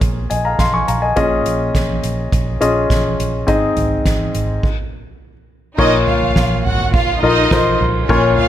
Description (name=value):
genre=piano-driven pop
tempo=104 BPM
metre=4/4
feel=straight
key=Bb minor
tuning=A4 = 440 Hz
part: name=warm grand piano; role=accompaniment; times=0.0-8.5 s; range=Ab2 to Db6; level=-17 LUFS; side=left 3 dB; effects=none
part: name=vintage muted fingered electric bass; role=bass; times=0.0-8.3 s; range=Ab1 to Bb1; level=-21 LUFS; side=right 1 dB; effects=none
part: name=soft-mallet drum kit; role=drums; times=0.0-8.5 s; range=crash cymbal, hi-hat, kick drum, ride cymbal, snare drum, toms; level=-19 LUFS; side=right 1 dB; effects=none
part: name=warm symphonic violin section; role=second line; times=5.8-8.5 s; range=Db4 to Gb5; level=-18 LUFS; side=right 2 dB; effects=none
room=light reverb, small room ambience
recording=none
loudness=-14 LUFS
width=side -11 dB against mid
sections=0.0-5.8 A section; 5.8-8.5 B section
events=stop 4.6-5.8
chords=0.0 Bbm7; 3.5 Ab; 5.8 Bbm